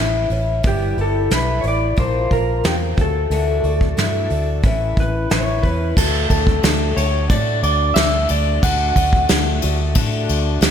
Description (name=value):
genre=folk rock and heartland rock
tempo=90 BPM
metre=4/4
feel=straight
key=D major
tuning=A4 = 440 Hz
part: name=picked twelve-string acoustic guitar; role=accompaniment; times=0.0-10.7 s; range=G2 to F#4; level=-24 LUFS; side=left 4 dB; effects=slapback echo
part: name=vintage muted fingered electric bass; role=bass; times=0.0-10.7 s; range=G1 to A2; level=-20 LUFS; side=equal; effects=none
part: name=soft brush drum kit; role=drums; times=0.3-10.7 s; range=crash cymbal, hi-hat, kick drum, snare drum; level=-19 LUFS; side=equal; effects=none
part: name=electric slide guitar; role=melody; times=0.7-9.3 s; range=G4 to F#5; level=-21 LUFS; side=equal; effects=slapback echo, tape echo
room=moderate lush hall reverb, RT60 2.5 s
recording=big arena sound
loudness=-15 LUFS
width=side -8 dB against mid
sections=0.0-6.0 A section; 6.0-10.7 B section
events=none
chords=0.0 Aadd9; 0.6 G6; 2.0 Bbadd9; 3.0 Dadd9; 4.6 Aadd9; 6.0 D